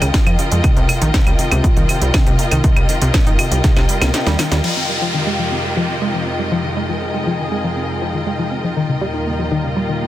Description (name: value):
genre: melodic techno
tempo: 120 BPM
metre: 4/4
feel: straight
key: F minor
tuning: A4 = 439 Hz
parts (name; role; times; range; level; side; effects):
- analog pluck; arpeggios; 0.0-10.1 s; Bb2 to C4; -21 LUFS; left 1 dB; chorus, sidechain pumping, tape echo
- plucky analog bass; bass; 0.0-4.6 s; G1 to F2; -18 LUFS; equal; sidechain pumping
- techno drum kit; drums; 0.0-4.7 s; claves, crash cymbal, hi-hat, snare drum; -21 LUFS; right 1 dB; none
- warm studio string section; texture; 0.0-10.1 s; F4 to G5; -23 LUFS; left 2 dB; sidechain pumping
- electronic kick drum; drums; 0.1-3.7 s; none; -15 LUFS; equal; none
- warm analog pad; sustained chords; 4.6-10.1 s; Eb2 to Bb4; -23 LUFS; equal; chorus, sidechain pumping
- downlifter; sound effects; 4.6-8.6 s; none; -26 LUFS; equal; none
room: light reverb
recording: dense, heavily limited modern master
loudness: -14 LUFS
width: side -14 dB against mid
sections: 0.0-4.6 A section; 4.6-10.1 B section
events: drum fill 3.6-4.6; kick drops out 4.1-4.6; band accent 4.5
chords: 0.0 Db; 0.6 Cm; 4.6 Fm7; 8.6 Eb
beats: 0.14 | 0.64 1.14 1.64 2.14 | 2.64 3.14 3.64 4.14 | 4.64 5.14 5.64 6.14 | 6.64 7.14 7.64 8.14 | 8.64 9.14 9.64